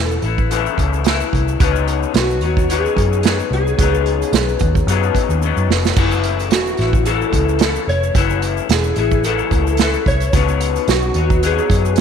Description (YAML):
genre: indie pop, bedroom pop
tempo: 110 BPM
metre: 4/4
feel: swing 55% on 16ths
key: F# dorian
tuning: A4 = 441 Hz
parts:
  - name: electric slide guitar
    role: melody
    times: 0.0-12.0 s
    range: F#4 to C#5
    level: -22 LUFS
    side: right 1 dB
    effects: ensemble chorus, tape echo
  - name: electric guitar through a small old amp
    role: accompaniment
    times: 0.0-12.0 s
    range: F#2 to E4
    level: -20 LUFS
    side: left 14 dB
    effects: analog chorus, vibrato effect
  - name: vintage muted picked electric bass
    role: bass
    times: 0.0-12.0 s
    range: E1 to F#2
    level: -19 LUFS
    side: equal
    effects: transformer saturation
  - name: tube shaker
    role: percussion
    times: 0.1-12.0 s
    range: none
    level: -38 LUFS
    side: right 18 dB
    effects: none
  - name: unplugged drum kit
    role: drums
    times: 0.2-12.0 s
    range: crash cymbal, hi-hat, kick drum, snare drum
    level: -18 LUFS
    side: right 3 dB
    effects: none
room: light reverb, studio reverb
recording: 1960s-style stereo with parts hard left and right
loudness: -14 LUFS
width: side -7 dB against mid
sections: 0.0-12.0 A section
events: drum fill 5.4-6.0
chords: 0.0 F#m7; 1.6 C#9sus4; 6.0 F#m7; 10.3 C#9sus4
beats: 0.51 1.05 | 1.60 2.15 2.69 3.24 | 3.78 4.33 4.88 5.42 | 5.97 6.51 7.06 7.60 | 8.15 8.70 9.24 9.79 | 10.33 10.88 11.43 11.97